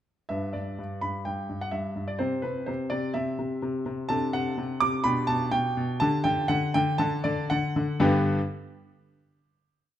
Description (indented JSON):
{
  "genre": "classical-period piano sonatina",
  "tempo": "125 BPM",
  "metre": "4/4",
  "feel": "uneven beats, rubato",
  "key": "G major",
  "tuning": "A4 = 441 Hz",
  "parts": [
    { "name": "clear grand piano", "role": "solo", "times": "0.3-8.4 s", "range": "G2 to D6", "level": "-25 LUFS", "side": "equal", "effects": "none" }
  ],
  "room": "moderate recital hall reverb, RT60 1.3 s",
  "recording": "close, detailed microphones",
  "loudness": "-25 LUFS",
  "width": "side -11 dB against mid",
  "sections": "0.3-8.0 A section; 8.0-10.0 final chord",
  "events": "none",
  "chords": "0.3 G; 2.2 N.C.; 4.1 D7/C; 5.1 G/B; 6.0 G5/D; 7.0 D; 8.0 G",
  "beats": "| 0.30 0.79 1.26 1.74 | 2.21 2.69 3.16 3.63 | 4.10 4.58 5.05 5.53 | 6.01 6.50 6.99 7.50 | 8.01"
}